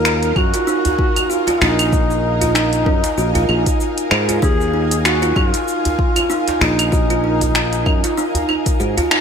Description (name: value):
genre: organic downtempo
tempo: 96 BPM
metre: 4/4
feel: swing 56% on 16ths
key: Eb minor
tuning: A4 = 440 Hz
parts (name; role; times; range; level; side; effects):
- mellow duduk; melody; 0.0-8.8 s; Eb4 to Bb4; -21 LUFS; left 1 dB; digital delay, shimmer reverb
- ethereal airy pad; sustained chords; 0.0-9.2 s; Eb4 to Ab5; -24 LUFS; equal; ensemble chorus, built-in reverb, sidechain pumping, shimmer reverb
- kalimba; arpeggios; 0.0-9.2 s; Eb4 to Gb4; -21 LUFS; right 2 dB; ping-pong delay, shimmer reverb
- sustaining fretless electric bass; bass; 0.0-8.9 s; Bb1 to Ab2; -20 LUFS; equal; analog chorus, sidechain pumping
- organic electronic drum kit; drums; 0.1-9.2 s; cabasa, claves, finger snaps, hi-hat; -20 LUFS; equal; overdrive, gated reverb
- djembe; percussion; 0.2-9.1 s; none; -27 LUFS; right 1 dB; none
- electronic kick drum; drums; 0.4-8.8 s; none; -19 LUFS; equal; overdrive
room: moderate plate reverb, RT60 2.2 s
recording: bright 1980s-style digital production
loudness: -14 LUFS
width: side -7 dB against mid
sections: 0.0-9.2 A section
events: none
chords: 0.0 Ebmadd9